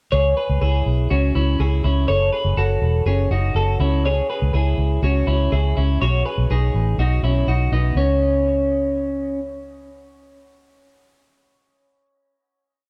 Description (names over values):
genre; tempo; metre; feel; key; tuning
jangly indie pop; 122 BPM; 4/4; straight; C# minor; A4 = 440 Hz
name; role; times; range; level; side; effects
twelve-string electric guitar; arpeggios; 0.1-9.4 s; B3 to C#5; -24 LUFS; equal; dub echo
vintage muted fingered electric bass; bass; 0.1-11.5 s; E1 to C#2; -21 LUFS; equal; none
room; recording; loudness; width
moderate spring reverb, RT60 2.9 s; echo-heavy mix; -20 LUFS; mono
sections
0.1-8.0 verse; 8.0-11.9 final note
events
none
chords
0.1 C#m7; 2.1 F#m; 3.8 C#m; 6.0 Badd9; 8.0 N.C.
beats
| 0.13 0.62 1.11 1.60 | 2.09 2.58 3.07 3.56 | 4.05 4.54 5.03 5.52 | 6.01 6.50 6.99 7.48 | 7.97 8.46 8.94 9.43 | 9.92 10.41 10.89 11.38